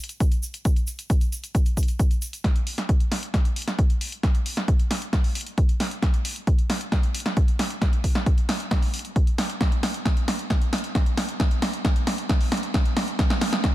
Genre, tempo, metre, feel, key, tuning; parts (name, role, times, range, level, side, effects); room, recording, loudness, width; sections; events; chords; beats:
trance; 134 BPM; 4/4; straight
punchy analog drum machine; drums; 0.0-13.7 s; hi-hat, snare drum; -26 LUFS; equal; sidechain pumping on hats
tube shaker; percussion; 0.1-2.4 s; -36 LUFS; right 2 dB
electronic kick drum; drums; 0.2-13.7 s; -21 LUFS; equal
light reverb; -21 LUFS; side -16 dB against mid
0.0-2.4 A section; 2.4-13.7 B section
build-up 2.4-13.7; drum fill 2.4-13.7
0.20 | 0.65 1.10 1.55 2.00 | 2.44 2.89 3.34 3.79 | 4.23 4.68 5.13 5.58 | 6.03 6.47 6.92 7.37 | 7.82 8.26 8.71 9.16 | 9.61 10.05 10.50 10.95 | 11.40 11.85 12.29 12.74 | 13.19 13.64